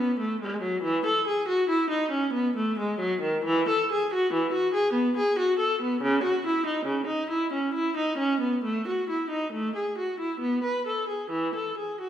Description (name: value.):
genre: classical, baroque-style suite movement for unaccompanied viola.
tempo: 69 BPM.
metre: 3/4.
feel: rubato.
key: C# minor, E major from 3.4 s.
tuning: A4 = 440 Hz.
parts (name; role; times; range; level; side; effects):
warm viola; solo; 0.0-12.1 s; C#3 to B4; -24 LUFS; equal; none.
room: wet recital hall reverb, RT60 1.4 s.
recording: recorded in a church or concert hall.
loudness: -24 LUFS.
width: side -10 dB against mid.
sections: 0.0-12.1 A section.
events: none.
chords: none.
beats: | 0.81 1.68 2.53 | 3.42 4.29 5.14 | 6.00 6.86 7.73 | 8.63 9.53 10.41 | 11.32.